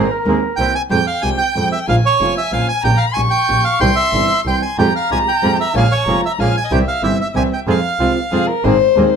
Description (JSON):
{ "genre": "tango", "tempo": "186 BPM", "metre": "3/4", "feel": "rubato", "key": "F harmonic minor", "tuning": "A4 = 440 Hz", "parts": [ { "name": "dark violin", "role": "second line", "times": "0.0-9.1 s", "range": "Ab4 to Db6", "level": "-19 LUFS", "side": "left 6 dB", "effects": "none" }, { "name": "silver concert flute", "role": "second line", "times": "0.0-0.8 s", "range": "Bb4 to C5", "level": "-21 LUFS", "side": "right 3 dB", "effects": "none" }, { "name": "flamenco guitar", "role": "accompaniment", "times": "0.0-9.1 s", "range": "C3 to Bb4", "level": "-20 LUFS", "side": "equal", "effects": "none" }, { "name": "bandoneon", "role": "stabs", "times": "0.0-0.7, 4.8-9.1 s", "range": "Ab3 to Ab4", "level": "-24 LUFS", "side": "right 4 dB", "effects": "none" }, { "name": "clear double bass", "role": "bass", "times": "0.0-9.1 s", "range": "F1 to F2", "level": "-19 LUFS", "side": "right 1 dB", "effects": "none" }, { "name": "bandoneon", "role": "melody", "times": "0.6-8.5 s", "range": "Db5 to Ab5", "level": "-18 LUFS", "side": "right 4 dB", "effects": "none" } ], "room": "moderate club reverb, RT60 0.5 s", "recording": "none", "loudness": "-13 LUFS", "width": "side -6 dB against mid", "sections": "0.9-8.6 A section", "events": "none", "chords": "0.0 Abadd9; 0.6 C7; 0.9 Fmadd9; 1.9 Bbm; 2.8 Gdim/Bb; 3.8 C; 4.8 Fmadd9; 5.7 Bbm7; 6.7 C; 7.7 Fm; 8.6 Abadd9", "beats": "0.26 0.59 | 0.91 1.24 1.56 | 1.88 2.20 2.52 | 2.84 3.16 3.49 | 3.81 4.13 4.45 | 4.78 5.10 5.43 | 5.75 6.07 6.39 | 6.71 7.03 7.35 | 7.67 7.99 8.32 | 8.64 8.97" }